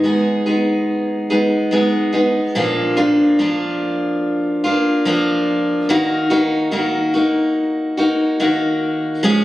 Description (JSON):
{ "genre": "pop", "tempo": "72 BPM", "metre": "4/4", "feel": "straight", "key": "Eb minor", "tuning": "A4 = 442 Hz", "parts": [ { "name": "picked steel-string acoustic guitar", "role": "solo", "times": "0.0-9.4 s", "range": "Bb2 to Ab4", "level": "-15 LUFS", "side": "equal", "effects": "none" } ], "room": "moderate concert hall reverb, RT60 2.3 s", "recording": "recorded on a phone in the room, club reverb, compression", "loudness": "-15 LUFS", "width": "side -15 dB against mid", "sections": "0.0-9.4 A section", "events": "none", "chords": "0.0 Abm; 2.6 Bb; 5.9 Ebm" }